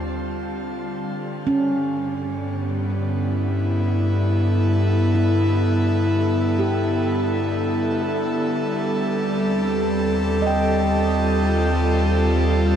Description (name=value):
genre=ambient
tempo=63 BPM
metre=4/4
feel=straight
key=unclear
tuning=A4 = 439 Hz
part: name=airy breathy pad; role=sustained chords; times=0.0-12.8 s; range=G3 to A5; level=-22 LUFS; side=equal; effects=chorus
part: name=round analog bass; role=bass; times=0.0-12.8 s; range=Eb2 to G2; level=-22 LUFS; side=equal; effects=tube saturation
part: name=bowed-like drone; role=drone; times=0.0-12.8 s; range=D3 to G3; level=-29 LUFS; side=right 1 dB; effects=built-in reverb
part: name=handpan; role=arpeggios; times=1.5-11.9 s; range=C#4 to G5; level=-28 LUFS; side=right 2 dB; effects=ping-pong delay
room=wet shimmer reverb, RT60 7.4 s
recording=dark, warm production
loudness=-19 LUFS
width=side -9 dB against mid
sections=0.0-12.8 A section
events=fade-in on synth drone 0.0-12.8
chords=0.0 Eb; 1.1 G; 8.7 Eb